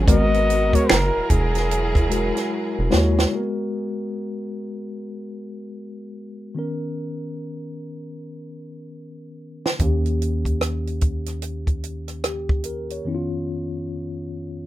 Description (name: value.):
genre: R&B, neo-soul.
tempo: 74 BPM.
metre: 4/4.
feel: swing 62% on 16ths.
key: unclear.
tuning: A4 = 443 Hz.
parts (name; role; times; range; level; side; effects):
mellow tine electric piano; accompaniment; 0.0-14.7 s; E#2 to C#5; -27 LUFS; left 2 dB; medium stereo tremolo, plate reverb.
clear studio string section; sustained chords; 0.0-3.3 s; F#3 to A#4; -28 LUFS; right 1 dB; plate reverb.
rubbery square bass; bass; 0.0-3.3, 9.8-13.0 s; E1 to D#2; -23 LUFS; equal; none.
breathy flugelhorn; melody; 0.1-2.5 s; G#4 to D#5; -24 LUFS; left 1 dB; plate reverb, tape echo.
compact cocktail drum kit; drums; 0.1-3.3, 9.7-13.0 s; finger snaps, hi-hat, kick drum, rim click, snare drum; -20 LUFS; right 1 dB; none.
room: light reverb.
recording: rough home demo mix.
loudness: -20 LUFS.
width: side -14 dB against mid.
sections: 0.0-3.3 A section; 3.3-14.7 B section.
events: drum fill 2.5-3.3, 8.2-9.8; break 13.0-14.7.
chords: 0.1 G#m9; 0.9 F#9; 3.3 G#m9; 6.6 Bmaj9; 9.8 D#7; 13.0 C#9/E#.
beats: | 0.07 0.89 1.70 2.51 | 3.32 4.13 4.94 5.75 | 6.56 7.37 8.18 8.99 | 9.80 10.62 11.43 12.24 | 13.05 13.86.